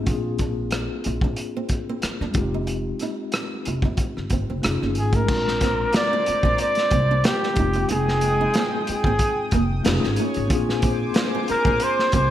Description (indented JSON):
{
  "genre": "R&B, neo-soul",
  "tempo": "92 BPM",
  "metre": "4/4",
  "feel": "swing 54% on 16ths",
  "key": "unclear",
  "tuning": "A4 = 442 Hz",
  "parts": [
    { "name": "flamenco guitar", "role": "second line", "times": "0.0-12.3 s", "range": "A3 to F4", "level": "-31 LUFS", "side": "right 6 dB", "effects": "wide subtle chorus" },
    { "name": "tine electric piano", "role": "accompaniment", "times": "0.0-12.3 s", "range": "Ab3 to G5", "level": "-28 LUFS", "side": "left 3 dB", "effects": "overdrive, fast stereo tremolo" },
    { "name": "upright bass", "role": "bass", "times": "0.0-12.3 s", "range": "F1 to Bb2", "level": "-26 LUFS", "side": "equal", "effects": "none" },
    { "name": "crunchy breakbeat drum kit", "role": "drums", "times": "0.1-12.3 s", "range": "crash cymbal, hi-hat, kick drum, rim click, snare drum", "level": "-24 LUFS", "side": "equal", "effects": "gated reverb" },
    { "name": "breathy flugelhorn", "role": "melody", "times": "5.0-12.3 s", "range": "G4 to D5", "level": "-22 LUFS", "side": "equal", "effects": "none" },
    { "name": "chorused pulse-width pad", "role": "sustained chords", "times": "5.7-12.3 s", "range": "Ab3 to Eb6", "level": "-31 LUFS", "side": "equal", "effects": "none" }
  ],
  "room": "moderate plate reverb, RT60 1.8 s, small room ambience",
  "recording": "bright 1980s-style digital production",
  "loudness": "-20 LUFS",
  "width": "side -11 dB against mid",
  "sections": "0.0-5.3 A section; 5.3-12.3 B section",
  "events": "none",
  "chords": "0.1 Bb9; 2.4 Fm9; 4.6 F7alt; 5.3 Bb9; 7.6 Fm9; 9.9 F7alt; 10.5 Bb9"
}